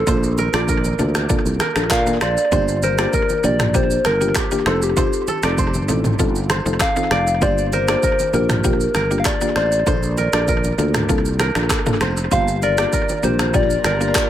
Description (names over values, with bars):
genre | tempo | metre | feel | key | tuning
afrobeats | 98 BPM | 4/4 | straight | G minor | A4 = 441 Hz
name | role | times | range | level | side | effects
soft struck synth lead | melody | 0.0-14.3 s | G4 to F5 | -21 LUFS | left 1 dB | chorus, dub echo
kora | riff | 0.0-14.3 s | A4 to D5 | -26 LUFS | right 5 dB | dub echo
sustaining fretless electric bass | bass | 0.0-14.1 s | F1 to Bb2 | -22 LUFS | equal | none
mallet-like synth pluck | accompaniment | 0.1-14.2 s | Bb3 to A4 | -24 LUFS | left 1 dB | chorus
deep house drum kit | drums | 0.1-14.3 s | finger snaps, handclaps, kick drum, rim click, shaker, toms | -21 LUFS | equal | dub echo
congas | percussion | 0.1-14.0 s | none | -31 LUFS | left 2 dB | none
granular cloud pad | sustained chords | 13.2-14.3 s | G3 to Bb4 | -28 LUFS | left 1 dB | built-in reverb
room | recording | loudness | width
light reverb | echo-heavy mix | -16 LUFS | side -11 dB against mid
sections
0.0-12.3 A section; 12.3-14.3 B section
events
none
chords
0.1 Bbmaj7; 2.5 Gm7; 4.7 F7; 7.4 Gm7; 9.9 Bbmaj7; 12.3 Gm7